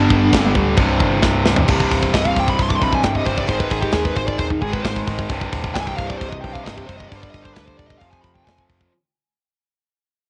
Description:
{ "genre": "heavy metal", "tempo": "132 BPM", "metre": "4/4", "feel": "straight", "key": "C harmonic minor", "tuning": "A4 = 441 Hz", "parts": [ { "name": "high-gain lead guitar", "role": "melody", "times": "0.0-8.6 s", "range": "D4 to D6", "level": "-26 LUFS", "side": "equal", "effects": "distortion, plate reverb, analog delay" }, { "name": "bluesy overdriven lead guitar", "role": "second line", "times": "0.0-0.5 s", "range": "B3", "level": "-26 LUFS", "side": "equal", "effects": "distortion, cassette tape, plate reverb, analog delay" }, { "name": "heavy high-gain guitar", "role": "riff", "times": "0.0-8.9 s", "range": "C2 to Ab3", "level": "-28 LUFS", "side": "equal", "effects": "distortion, cassette tape" }, { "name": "tight distorted guitar", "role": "riff", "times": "0.0-8.9 s", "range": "C2 to Ab3", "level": "-26 LUFS", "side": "equal", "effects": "distortion, cassette tape" }, { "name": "overdriven picked electric bass", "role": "bass", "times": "0.0-8.9 s", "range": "C1 to Eb2", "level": "-27 LUFS", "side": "equal", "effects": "none" }, { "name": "tight metal drum kit", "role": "drums", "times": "0.1-8.9 s", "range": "china cymbal, crash cymbal, hi-hat, kick drum, snare drum, toms", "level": "-23 LUFS", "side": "equal", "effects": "cassette tape" } ], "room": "light reverb", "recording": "home recording on cassette, nothing above 10.5 kHz", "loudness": "-19 LUFS", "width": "mono", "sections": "0.0-1.7 A section; 1.7-8.9 B section", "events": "drum fill 1.2-1.7; fade-out 1.7-8.9; lead electric guitar solo 1.7-8.9", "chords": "0.0 G; 0.8 C5; 3.5 Ab5; 5.3 C5; 7.1 G5; 8.0 F5", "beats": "0.32 0.77 1.22 | 1.67 2.12 2.58 3.03 | 3.48 3.93 4.38 4.84 | 5.29 5.74 6.20 6.65 | 7.10 7.56 8.01 8.46" }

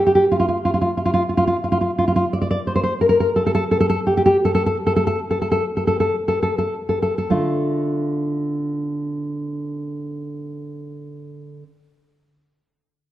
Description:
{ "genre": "romantic piece for solo classical guitar", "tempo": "33-62 BPM (dotted quarters)", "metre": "6/8", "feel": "rubato", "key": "D minor", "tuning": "A4 = 439 Hz", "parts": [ { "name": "nylon-string guitar", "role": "solo", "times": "0.0-11.6 s", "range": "D3 to D5", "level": "-18 LUFS", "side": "equal", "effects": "slapback echo" } ], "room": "wet recital hall reverb, RT60 1.8 s", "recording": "dark, warm production", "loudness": "-18 LUFS", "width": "side -13 dB against mid", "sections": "0.0-2.2 A section; 2.2-7.3 B section; 7.3-13.1 C section", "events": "slowing down 1.2-7.3", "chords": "0.0 N.C.; 7.3 Dm", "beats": "| 0.24 1.22 | 2.24 3.28 | 4.36 5.64 | 7.30 8.83 | 10.32" }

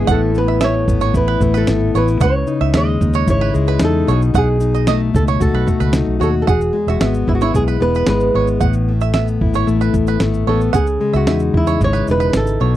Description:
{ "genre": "acoustic pop", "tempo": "112 BPM", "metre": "4/4", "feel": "straight", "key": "E major", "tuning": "A4 = 439 Hz", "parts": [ { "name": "flamenco guitar", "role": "melody", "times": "0.0-12.7 s", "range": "E4 to D#5", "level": "-20 LUFS", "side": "right 2 dB", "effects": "none" }, { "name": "fingerpicked plugged-in steel-string acoustic guitar", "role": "accompaniment", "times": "0.0-12.8 s", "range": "E2 to F#4", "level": "-18 LUFS", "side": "left 5 dB", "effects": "none" }, { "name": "vintage muted fingered electric bass", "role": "bass", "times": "0.0-12.8 s", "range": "E1 to E2", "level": "-18 LUFS", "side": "right 1 dB", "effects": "none" }, { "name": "bluegrass banjo", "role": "arpeggios", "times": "0.1-12.7 s", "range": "B4 to F#5", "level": "-22 LUFS", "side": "right 14 dB", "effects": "none" }, { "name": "dusty soul sampler-style drum kit", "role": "drums", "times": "0.1-12.8 s", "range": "kick drum, shaker, snare drum", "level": "-19 LUFS", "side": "right 1 dB", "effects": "none" } ], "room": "little or no reverb", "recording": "dry, close 1970s-style studio recording", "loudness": "-13 LUFS", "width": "side -13 dB against mid", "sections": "0.0-6.5 A section; 6.5-12.8 B section", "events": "none", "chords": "0.1 Asus2; 2.2 C#madd9; 4.1 B7; 6.5 Eadd9; 8.6 Asus2; 10.7 C#madd9", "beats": "| 0.08 0.61 1.15 1.68 | 2.21 2.75 3.28 3.81 | 4.34 4.88 5.41 5.94 | 6.48 7.01 7.54 8.08 | 8.61 9.14 9.68 10.21 | 10.74 11.28 11.81 12.34" }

